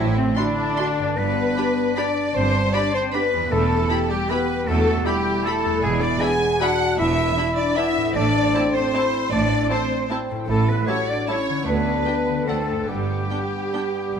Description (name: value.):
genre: classical.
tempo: 137-167 BPM.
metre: 3/4.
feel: rubato.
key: G major.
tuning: A4 = 440 Hz.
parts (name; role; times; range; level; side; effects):
bright clarinet; second line; 0.0-14.2 s; C4 to G#5; -29 LUFS; left 1 dB; none.
bright flute section; second line; 0.0-14.2 s; C4 to G#5; -28 LUFS; left 1 dB; none.
warm studio violin section; second line; 0.0-14.2 s; C4 to G#5; -27 LUFS; left 1 dB; none.
mellow bassoon; accompaniment; 0.0-14.2 s; B3 to G4; -29 LUFS; right 2 dB; none.
mellow French horn section; sustained chords; 0.0-14.2 s; C3 to G#4; -26 LUFS; left 3 dB; none.
concert harp; arpeggios; 0.0-14.2 s; E2 to E5; -32 LUFS; left 7 dB; none.
bright studio cello section; bass; 0.0-14.2 s; D2 to A2; -27 LUFS; right 3 dB; none.
rich studio double bass section; bass; 0.0-14.2 s; E1 to D2; -28 LUFS; right 3 dB; none.
warm studio violin section; melody; 0.4-13.8 s; F#5 to C6; -34 LUFS; left 2 dB; none.
warm studio viola section; accompaniment; 0.4-13.8 s; G3 to G4; -32 LUFS; right 2 dB; none.
room: wet recital hall reverb, RT60 1.8 s.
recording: none.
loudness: -19 LUFS.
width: side -7 dB against mid.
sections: 0.0-14.2 A section.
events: none.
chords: 0.0 D7/A; 1.2 G; 3.5 Em; 5.8 E7; 8.1 Am; 10.5 A7; 11.7 G/D; 12.5 D; 12.9 G.